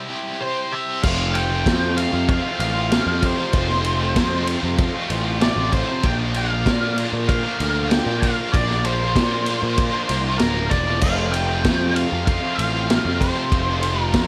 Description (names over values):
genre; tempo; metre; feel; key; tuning
classic rock; 96 BPM; 4/4; straight; unclear; A4 = 440 Hz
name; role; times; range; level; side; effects
overdriven electric guitar; riff; 0.0-14.3 s; F2 to C5; -30 LUFS; equal; harmonic tremolo
tight distorted guitar; riff; 0.0-14.3 s; F2 to C5; -31 LUFS; equal; distortion
octave-fuzz lead guitar; melody; 0.4-14.3 s; Bb4 to G5; -28 LUFS; equal; distortion, analog delay
bright tonewheel organ; sustained chords; 1.0-14.3 s; none; barely audible; none; none
fuzz picked electric bass; bass; 1.0-14.3 s; D1 to Bb2; -26 LUFS; equal; overdrive
vintage drum kit; drums; 1.0-14.3 s; crash cymbal, kick drum, ride cymbal, snare drum; -25 LUFS; equal; none
room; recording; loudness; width
light reverb; none; -20 LUFS; mono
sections
0.0-1.0 A section; 1.0-14.3 B section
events
break 0.0-1.0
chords
0.0 C; 1.0 F; 6.0 Bb; 11.0 F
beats
0.41 | 1.03 1.66 2.28 2.91 | 3.53 4.16 4.78 5.41 | 6.03 6.66 7.28 7.91 | 8.53 9.15 9.78 10.40 | 11.03 11.65 12.27 12.89 | 13.52 14.14